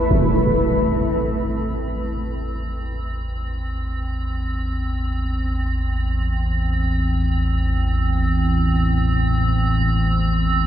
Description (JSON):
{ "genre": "dark ambient drone", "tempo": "free time", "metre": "none", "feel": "none", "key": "A minor", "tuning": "A4 = 440 Hz", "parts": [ { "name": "deep rumbling drone", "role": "drone", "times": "0.0-10.7 s", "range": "A1 to E2", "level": "-20 LUFS", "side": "equal", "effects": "built-in reverb, lush chorus" }, { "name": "icy glass pad", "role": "texture", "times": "0.7-10.7 s", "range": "C4", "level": "-27 LUFS", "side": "right 2 dB", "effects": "chorus, built-in reverb" } ], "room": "wet cathedral reverb, RT60 5.1 s", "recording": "cassette tape, lossy compression artefacts", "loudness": "-19 LUFS", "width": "side -11 dB against mid", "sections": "0.1-10.7 A section", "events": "fade-in on ambient pad 0.1-10.7", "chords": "0.1 Am" }